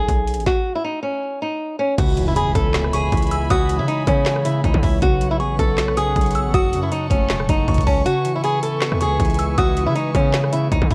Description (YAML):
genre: hip hop, trap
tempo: 158 BPM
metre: 4/4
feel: half-time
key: C# minor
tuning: A4 = 440 Hz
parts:
  - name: flamenco guitar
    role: melody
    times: 0.0-10.9 s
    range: C#4 to A4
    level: -24 LUFS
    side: equal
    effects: low-pass filter
  - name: warm studio string section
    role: sustained chords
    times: 0.0-10.9 s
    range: C#3 to C#6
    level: -33 LUFS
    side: equal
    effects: none
  - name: distorted 808-style bass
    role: bass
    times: 0.0-10.9 s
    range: E1 to C#3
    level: -25 LUFS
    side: equal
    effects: distortion
  - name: trap drum kit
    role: drums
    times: 0.1-10.9 s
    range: crash cymbal, handclaps, hi-hat, kick drum, rim click, snare drum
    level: -23 LUFS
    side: equal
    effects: none
  - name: mellow electric guitar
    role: accompaniment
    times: 2.0-10.9 s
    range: F#2 to C#4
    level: -27 LUFS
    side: equal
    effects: ensemble chorus, low-pass filter
  - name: impact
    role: sound effects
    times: 2.2-3.5 s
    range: none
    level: -33 LUFS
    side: equal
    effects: none
  - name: delicate synth tine bell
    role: second line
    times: 2.4-10.9 s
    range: A5 to E6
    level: -30 LUFS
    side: equal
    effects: chorus, phaser, digital delay
room: little or no reverb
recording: worn, warbling old tape, cassette tape, warbly pitch drift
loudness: -19 LUFS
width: mono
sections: 0.0-2.0 A section; 2.0-10.9 B section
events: stop 0.5-2.0; impact 2.0-3.5; break 8.1-8.8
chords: 0.5 N.C.; 2.0 C#m7; 5.0 Bsus2; 6.5 F#m; 8.1 C#m7